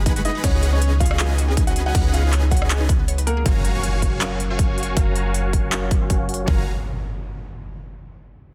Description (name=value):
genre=future bass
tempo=159 BPM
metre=4/4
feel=swing 54% on 16ths, half-time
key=F# major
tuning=A4 = 441 Hz
part: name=ethereal airy pad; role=sustained chords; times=0.0-3.4 s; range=C#3 to F#4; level=-40 LUFS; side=equal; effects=none
part: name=supersaw chords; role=riff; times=0.0-6.6 s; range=G#3 to C#6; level=-31 LUFS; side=equal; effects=sidechain pumping, low-pass filter, delay
part: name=warm 808-style bass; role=bass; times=0.0-6.7 s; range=F#1 to C#2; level=-24 LUFS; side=equal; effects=sidechain pumping
part: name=unison pluck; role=arpeggios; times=0.1-3.4 s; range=D#4 to F#5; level=-35 LUFS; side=equal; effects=sidechain pumping, delay
part: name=big-room dance drum kit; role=drums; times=0.1-6.4 s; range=crash cymbal, handclaps, hi-hat, rim click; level=-30 LUFS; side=equal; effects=none
part: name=electronic kick drum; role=drums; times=0.1-6.6 s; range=none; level=-23 LUFS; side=equal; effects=none
part: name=warm grand piano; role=melody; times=0.2-3.4 s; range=A#3 to F#5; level=-31 LUFS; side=equal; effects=vintage 12-bit sampler grit, sidechain pumping, delay
part: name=tine electric piano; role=accompaniment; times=3.4-6.6 s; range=F#3 to E#5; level=-32 LUFS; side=equal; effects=overdrive, sidechain pumping, delay
part: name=impact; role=sound effects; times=3.5-8.0 s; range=none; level=-33 LUFS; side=equal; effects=none
room=digital ambience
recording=dense, heavily limited modern master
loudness=-20 LUFS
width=mono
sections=0.0-3.5 A section; 3.5-6.5 B section; 6.5-8.0 C section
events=drop 0.0-3.5; break 3.1-3.5; impact 3.5-5.0; filter sweep on supersaw synth 3.5-6.5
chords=0.4 C#9sus4; 3.5 F#maj7